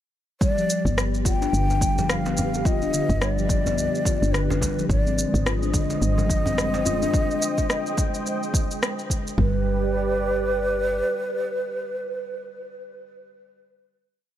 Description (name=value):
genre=organic downtempo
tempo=107 BPM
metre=4/4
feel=swing 58% on 16ths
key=G phrygian dominant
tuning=A4 = 439 Hz
part: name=breathy mellow ney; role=melody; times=0.4-12.4 s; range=B4 to G5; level=-27 LUFS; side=equal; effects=digital delay
part: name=warm analog pad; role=sustained chords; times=0.4-12.4 s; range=Ab3 to Eb6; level=-32 LUFS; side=right 3 dB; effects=chorus, sidechain pumping
part: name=steel tongue drum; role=arpeggios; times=0.4-9.6 s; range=D3 to F4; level=-28 LUFS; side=left 2 dB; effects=ping-pong delay
part: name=electronic kick drum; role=drums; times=0.4-9.5 s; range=none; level=-25 LUFS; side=equal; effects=overdrive
part: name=electronic shaker and rim click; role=drums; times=0.4-9.4 s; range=none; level=-29 LUFS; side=equal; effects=overdrive
part: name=woody FM bass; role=bass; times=0.9-11.0 s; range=D1 to B1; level=-26 LUFS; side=equal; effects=none
part: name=djembe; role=percussion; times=0.9-7.1 s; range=none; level=-32 LUFS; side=equal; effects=none
room=light reverb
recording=none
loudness=-21 LUFS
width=side -11 dB against mid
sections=0.4-9.4 groove; 9.4-11.6 final chord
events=none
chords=0.4 G; 4.9 Abmaj7; 9.4 G